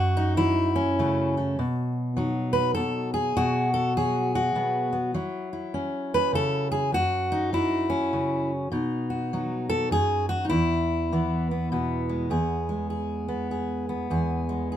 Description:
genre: folk, solo fingerstyle acoustic guitar.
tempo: 101 BPM.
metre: 3/4.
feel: swing 62% on 8ths.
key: E major.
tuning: A4 = 440 Hz.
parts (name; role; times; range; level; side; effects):
fingerpicked steel-string acoustic guitar; solo; 0.0-14.8 s; E2 to B4; -23 LUFS; equal; none.
room: light reverb.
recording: minimal, uncompressed stereo recording.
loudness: -24 LUFS.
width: side -10 dB against mid.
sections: 0.0-12.3 A section; 12.3-14.8 B section.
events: none.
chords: 0.0 F#m7; 1.6 B; 5.2 F#5; 8.7 B; 10.5 E5; 12.3 E.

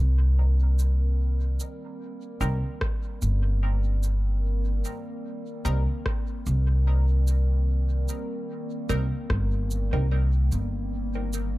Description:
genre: ambient dub.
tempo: 74 BPM.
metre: 4/4.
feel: swing 55% on 16ths.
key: C minor.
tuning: A4 = 440 Hz.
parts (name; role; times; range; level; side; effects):
warbly tape-like pad; sustained chords; 0.0-11.6 s; Eb3 to Bb4; -36 LUFS; equal; chorus, built-in reverb.
upright bass; bass; 0.0-11.6 s; G1 to C2; -22 LUFS; equal; tube saturation.
electronic shaker and rim click; drums; 0.8-11.5 s; none; -36 LUFS; equal; dub echo.
filtered dub chord stab; stabs; 2.4-10.1 s; G3 to Bb4; -35 LUFS; right 1 dB; phaser, cassette tape, dub echo.
electronic kick drum; drums; 2.8-9.5 s; none; -31 LUFS; equal; none.
room: digital ambience.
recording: echo-heavy mix.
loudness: -23 LUFS.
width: side -18 dB against mid.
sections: 0.0-11.6 A section.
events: fade-in on ambient pad 0.0-11.6.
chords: 0.0 Cm7.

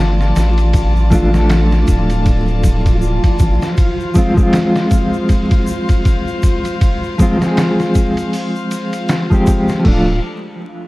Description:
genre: trip hop.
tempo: 79 BPM.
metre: 4/4.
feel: swing 58% on 16ths.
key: unclear.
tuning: A4 = 440 Hz.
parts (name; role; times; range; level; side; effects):
mellow electric guitar; accompaniment; 0.0-10.2 s; F3 to A4; -17 LUFS; equal; tremolo, vintage 12-bit sampler grit, tape echo.
warm chamber string section; sustained chords; 0.0-10.2 s; D4 to A5; -23 LUFS; left 2 dB; none.
round analog bass; bass; 0.0-3.6, 9.9-10.2 s; D1 to A1; -14 LUFS; equal; none.
flickering grainy texture; texture; 0.1-9.9 s; F3 to F4; -28 LUFS; right 2 dB; none.
trip hop sampler-style drum kit; drums; 0.2-10.0 s; crash cymbal, hi-hat, kick drum, ride cymbal, snare drum; -16 LUFS; equal; small room reverb.
egg shaker; percussion; 0.2-9.8 s; none; -38 LUFS; left 3 dB; none.
room: little or no reverb.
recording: dark, warm production, vinyl crackle.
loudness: -12 LUFS.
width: side -20 dB against mid.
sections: 0.0-9.8 A section; 9.8-10.9 B section.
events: none.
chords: 0.0 Dm; 3.8 Fm; 9.8 Dm.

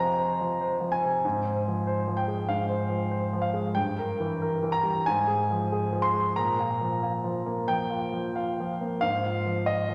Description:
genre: classical, romantic character piece for solo piano.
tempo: 93 BPM.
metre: 4/4.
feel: uneven beats, rubato.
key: F minor.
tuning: A4 = 440 Hz.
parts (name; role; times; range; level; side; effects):
clear grand piano; solo; 0.0-9.9 s; F2 to C6; -27 LUFS; equal; none.
room: wet scoring stage reverb, RT60 1.4 s.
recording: none.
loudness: -28 LUFS.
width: mono.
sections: 0.0-9.9 A section.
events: none.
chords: 0.0 Fm; 1.2 Fm/Ab; 3.8 Gm6; 5.1 Fm/Ab; 6.4 Bb5; 9.0 Fm/Ab.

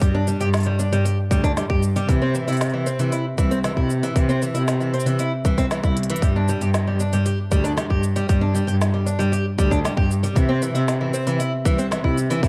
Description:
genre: folktronica.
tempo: 116 BPM.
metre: 4/4.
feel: straight.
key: unclear.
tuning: A4 = 440 Hz.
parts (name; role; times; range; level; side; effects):
fingerpicked twelve-string acoustic guitar; arpeggios; 0.0-12.5 s; E3 to G4; -27 LUFS; equal; tape echo.
warm cello; bass; 0.0-12.5 s; C2 to C3; -24 LUFS; equal; none.
electronic kick drum; drums; 0.0-12.5 s; none; -22 LUFS; equal; overdrive.
organic electronic drum kit; drums; 0.0-12.5 s; cabasa, hi-hat, snare drum; -32 LUFS; equal; overdrive.
room: digital ambience.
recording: dark, warm production.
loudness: -21 LUFS.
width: mono.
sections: 0.0-12.5 A section.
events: drum fill 6.0.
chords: 0.0 G5; 2.1 C; 6.2 G5; 10.4 C.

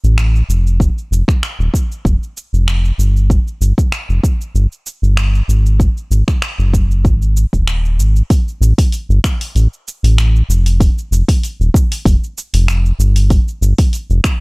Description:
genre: sunset chillout.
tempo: 96 BPM.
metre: 4/4.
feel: swing 54% on 16ths.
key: unclear.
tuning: A4 = 440 Hz.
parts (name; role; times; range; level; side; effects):
round analog bass; bass; 0.0-14.2 s; D#1 to A1; -11 LUFS; equal; tube saturation.
deep house drum kit; drums; 0.0-14.4 s; cabasa, finger snaps, hi-hat; -23 LUFS; equal; small room ambience.
electronic kick drum; drums; 0.8-14.4 s; none; -13 LUFS; equal; small room ambience.
room: digital ambience.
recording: dry, gritty hardware recording, transformer saturation.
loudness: -12 LUFS.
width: side -30 dB against mid.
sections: 0.0-8.3 A section; 8.3-14.4 B section.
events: none.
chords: none.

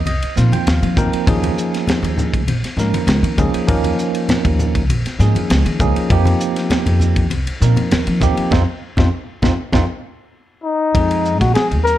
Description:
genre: electric jazz fusion.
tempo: 99 BPM.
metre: 4/4.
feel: straight.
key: unclear.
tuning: A4 = 441 Hz.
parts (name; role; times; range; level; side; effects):
bell-like tine electric piano; accompaniment; 0.0-12.0 s; F3 to G5; -20 LUFS; right 2 dB; medium stereo tremolo.
upright bass; bass; 0.0-12.0 s; Bb1 to F3; -17 LUFS; equal; none.
tight funk drum kit; drums; 0.1-12.0 s; hi-hat, kick drum, ride cymbal, snare drum; -21 LUFS; equal; none.
congas; percussion; 0.1-9.9 s; none; -23 LUFS; left 1 dB; none.
trumpet with bucket mute; melody; 10.6-12.0 s; Eb4 to Bb4; -16 LUFS; left 4 dB; slapback echo.
room: light reverb.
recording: dark, warm production.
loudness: -14 LUFS.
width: side -13 dB against mid.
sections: 0.0-10.9 A section; 10.9-12.0 B section.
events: tine electric piano fill 0.0-1.3, 10.0-10.9; band accent 8.5-10.9; drum fill 10.3-10.9.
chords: 0.0 F9sus4; 1.3 Eb9sus4; 6.1 F9sus4; 10.9 Fm7.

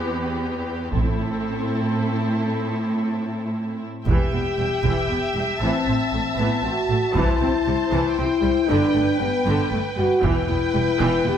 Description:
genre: cinematic, epic orchestral film score.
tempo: 117 BPM.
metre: 3/4.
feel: straight.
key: E minor from 4.1 s.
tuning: A4 = 443 Hz.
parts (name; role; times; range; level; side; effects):
dark symphonic violin section; melody; 0.0-11.4 s; A4 to A5; -30 LUFS; left 2 dB; none.
warm symphonic violin section; second line; 0.0-11.4 s; E4 to E5; -29 LUFS; left 1 dB; none.
warm symphonic viola section; accompaniment; 0.0-11.3 s; D3 to C4; -28 LUFS; right 2 dB; none.
rich symphonic cello section; bass; 0.0-11.3 s; E2 to C3; -27 LUFS; right 2 dB; none.
warm studio double bass section; bass; 0.9-1.4, 4.1-11.3 s; E1 to C2; -26 LUFS; right 3 dB; none.
taiko ensemble; drums; 0.9-11.2 s; none; -25 LUFS; equal; none.
mellow French horn section; sustained chords; 4.1-11.4 s; B3 to G4; -22 LUFS; left 3 dB; none.
room: moderate recital hall reverb, RT60 1.4 s.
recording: none.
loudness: -19 LUFS.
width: side -9 dB against mid.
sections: 0.0-4.1 A section; 4.1-11.4 B section.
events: build-up 0.0-4.1.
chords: 0.0 Em; 0.9 Am; 4.1 Em; 5.6 Am; 7.2 C; 8.7 G; 10.2 Em.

